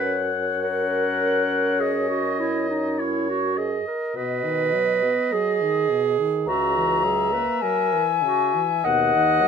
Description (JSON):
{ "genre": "classical, slow romantic movement for wind quintet", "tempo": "51 BPM", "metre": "4/4", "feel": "rubato", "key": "unclear", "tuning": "A4 = 443 Hz", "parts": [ { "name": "concert flute", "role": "melody", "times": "0.0-9.5 s", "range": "C#5 to A#5", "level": "-24 LUFS", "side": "left 9 dB", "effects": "none" }, { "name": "warm oboe", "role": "second line", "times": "0.0-9.5 s", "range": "C#5 to F#5", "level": "-28 LUFS", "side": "left 3 dB", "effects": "none" }, { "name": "warm French horn", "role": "accompaniment", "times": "0.0-9.5 s", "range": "B2 to C#4", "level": "-31 LUFS", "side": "left 1 dB", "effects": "none" }, { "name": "warm clarinet", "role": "accompaniment", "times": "0.0-9.5 s", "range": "D#4 to D#5", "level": "-24 LUFS", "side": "right 6 dB", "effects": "none" }, { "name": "mellow bassoon", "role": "bass", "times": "0.0-9.5 s", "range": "C#2 to B2", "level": "-28 LUFS", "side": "right 1 dB", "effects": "none" } ], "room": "moderate studio reverb, RT60 0.8 s", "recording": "minimal, uncompressed stereo recording", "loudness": "-20 LUFS", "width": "side -6 dB against mid", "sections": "0.0-9.5 A section", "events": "none", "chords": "0.0 F#; 4.2 B; 6.5 F#7/C#; 8.8 B/D#", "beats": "0.62 1.80 2.99 | 4.16 5.33 6.47 7.63 | 8.84" }